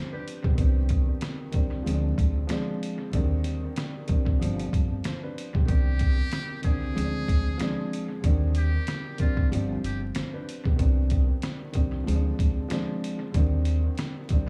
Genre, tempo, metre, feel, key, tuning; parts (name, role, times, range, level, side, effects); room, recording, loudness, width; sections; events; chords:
hip hop, boom-bap hip-hop; 94 BPM; 4/4; swing 55% on 16ths; C harmonic minor; A4 = 440 Hz
dark grand piano; accompaniment; 0.0-14.5 s; D3 to C5; -34 LUFS; equal; analog delay
trip hop sampler-style drum kit; drums; 0.3-14.5 s; hi-hat, kick drum, snare drum; -29 LUFS; equal
upright bass; bass; 0.4-14.5 s; G1 to Eb2; -29 LUFS; equal
trumpet with metal mute; melody; 5.7-10.0 s; F4 to Ab4; -40 LUFS; equal; analog delay
small room ambience; echo-heavy mix, vinyl crackle; -26 LUFS; mono
0.0-14.5 A section
0.0 G7sus4; 0.6 Cmadd9; 1.9 Dm7b5; 3.1 Cmadd9/Eb; 4.4 G7sus4; 5.7 Cmadd9; 7.0 Dm7b5; 8.2 Cmadd9/Eb; 9.5 G7sus4; 10.8 Cmadd9; 12.1 Dm7b5; 13.3 Cmadd9/Eb